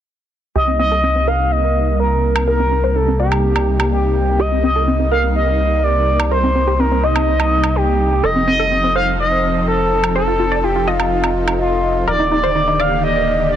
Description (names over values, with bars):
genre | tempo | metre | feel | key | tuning
progressive house | 125 BPM | 4/4 | straight | C dorian | A4 = 444 Hz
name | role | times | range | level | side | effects
expressive synth lead | melody | 0.6-13.6 s | F4 to F5 | -17 LUFS | equal | chorus, tape echo
supersaw pad | sustained chords | 0.6-13.6 s | C3 to A4 | -22 LUFS | right 1 dB | phaser, low-pass filter
tight sequenced synth | arpeggios | 0.6-13.6 s | C4 to Eb5 | -21 LUFS | equal | chorus, phaser, tape echo
round analog bass | bass | 0.6-13.6 s | Eb1 to C2 | -20 LUFS | equal | none
woodblock | drums | 2.4-11.6 s | none | -24 LUFS | right 3 dB | overdrive
room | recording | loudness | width
light reverb, digital ambience | dense, heavily limited modern master | -14 LUFS | side -10 dB against mid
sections
0.6-13.6 A section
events
filter sweep on synth arpeggio sound 0.6-13.6; filter sweep on supersaw synth 0.6-13.6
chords
0.6 Cm7; 8.2 F7; 12.1 Ebmaj7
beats
| 0.56 1.04 1.52 2.00 | 2.48 2.96 3.44 3.92 | 4.40 4.88 5.36 5.84 | 6.32 6.80 7.28 7.76 | 8.24 8.72 9.20 9.68 | 10.16 10.64 11.12 11.60 | 12.08 12.56 13.04 13.52